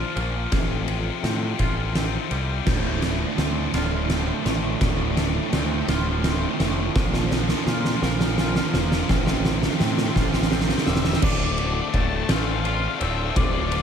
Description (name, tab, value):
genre	post-rock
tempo	56 BPM (dotted quarters)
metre	6/8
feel	straight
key	D minor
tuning	A4 = 440 Hz
part	rich symphonic string section	sustained chords	0.0-13.8 s	C4 to C6	-38 LUFS	right 2 dB	none
part	twangy electric guitar	arpeggios	0.0-13.8 s	D2 to Bb4	-32 LUFS	left 2 dB	ensemble chorus, analog delay
part	tight distorted guitar	riff	0.0-13.8 s	D2 to F4	-30 LUFS	left 13 dB	distortion
part	growling picked electric bass	bass	0.2-13.8 s	D1 to Bb2	-26 LUFS	equal	overdrive
part	oversized low-tuned drum kit	drums	0.2-13.8 s	crash cymbal, kick drum, ride cymbal, snare drum	-24 LUFS	right 1 dB	none
part	crunchy overdriven guitar	riff	2.7-11.2 s	D2 to F3	-28 LUFS	right 13 dB	none
part	octave-fuzz lead guitar	melody	10.9-13.8 s	D5 to A5	-30 LUFS	left 1 dB	distortion, analog delay
room	light reverb, small room ambience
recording	none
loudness	-20 LUFS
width	side -8 dB against mid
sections	0.0-11.2 A section; 11.2-13.8 B section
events	build-up 0.0-11.2; drum fill 0.0-11.2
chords	0.0 Bbsus2; 0.5 Fadd9/A; 2.7 Dm7; 7.0 Bbsus2; 9.1 Fadd9/A; 11.2 Dm7